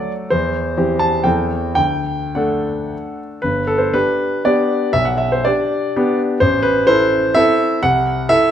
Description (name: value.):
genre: classical, romantic triple-time dance for piano with dotted rhythms.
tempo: 99-148 BPM.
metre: 3/4.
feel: rubato.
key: G major.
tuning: A4 = 438 Hz.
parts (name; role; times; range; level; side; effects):
warm grand piano; solo; 0.0-8.5 s; G1 to A5; -14 LUFS; equal; none.
room: moderate recital hall reverb, RT60 1.6 s.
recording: none.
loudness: -14 LUFS.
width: side -9 dB against mid.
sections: 0.0-3.4 A section; 3.4-8.5 B section.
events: none.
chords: 0.3 C/E; 1.8 D; 3.4 G; 4.9 G/B; 6.4 Am; 7.8 Am/C.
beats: | 0.32 0.76 1.25 | 1.77 2.35 2.93 | 3.44 3.94 4.45 | 4.95 5.45 5.96 | 6.41 6.88 7.37 | 7.83 8.30.